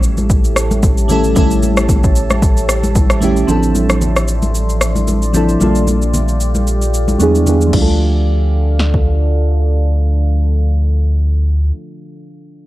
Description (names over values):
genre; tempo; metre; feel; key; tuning
amapiano; 113 BPM; 4/4; swing 55% on 16ths; D harmonic minor; A4 = 440 Hz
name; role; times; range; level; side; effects
crystalline FM electric piano; accompaniment; 0.0-12.7 s; F3 to A4; -18 LUFS; right 1 dB; chorus, phaser, low-pass filter
deep dark ambient pad; sustained chords; 0.0-11.7 s; D3 to C6; -24 LUFS; equal; chorus, built-in reverb, sidechain pumping, low-pass filter
warm sub bass; bass; 0.0-11.7 s; A1 to E2; -14 LUFS; equal; none
deep house drum kit; drums; 0.0-9.1 s; crash cymbal, kick drum, rim click, shaker, snare drum; -16 LUFS; equal; none
congas; percussion; 0.2-8.0 s; none; -21 LUFS; left 1 dB; none
room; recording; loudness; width
digital ambience; dry, gritty hardware recording; -11 LUFS; side -16 dB against mid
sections
0.0-7.7 A section; 7.7-12.0 B section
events
filter sweep 0.0-7.7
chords
0.0 A7; 3.5 Dm9/A; 5.6 Gm7/Bb; 7.2 E9; 7.7 Dm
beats
0.30 0.83 | 1.36 1.89 2.42 2.95 | 3.48 4.01 4.55 5.08 | 5.61 6.14 6.67 7.20 | 7.73 8.26 8.79 9.32 | 9.86 10.39 10.92 11.45